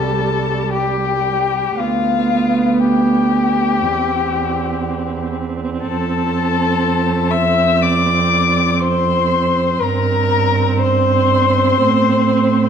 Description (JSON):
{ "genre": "classical, slow romantic movement for string quartet", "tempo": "59 BPM", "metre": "4/4", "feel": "rubato", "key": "C major", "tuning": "A4 = 440 Hz", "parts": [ { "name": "muted violin", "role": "melody", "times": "0.0-12.7 s", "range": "F5 to E6", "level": "-20 LUFS", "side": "left 10 dB", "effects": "none" }, { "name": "muted violin", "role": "second line", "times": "0.0-12.7 s", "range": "F4 to E5", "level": "-20 LUFS", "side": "left 2 dB", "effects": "none" }, { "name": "muted viola", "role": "accompaniment", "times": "0.0-12.7 s", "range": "G3 to C4", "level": "-20 LUFS", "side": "right 2 dB", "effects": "none" }, { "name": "muted cello", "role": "bass", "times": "0.0-12.7 s", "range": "C2 to A2", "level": "-19 LUFS", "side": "right 5 dB", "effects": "none" } ], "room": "wet recital hall reverb, RT60 1.5 s", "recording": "dark, warm production", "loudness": "-14 LUFS", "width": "side -7 dB against mid", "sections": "0.0-12.7 A section", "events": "none", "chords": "0.0 C5; 1.8 G7/D; 3.8 C/E; 5.8 F; 9.8 C5/G; 11.8 Am", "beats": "0.73 | 1.78 2.80 3.81 4.83 | 5.84 6.83 7.81 8.82 | 9.84 10.83 11.83" }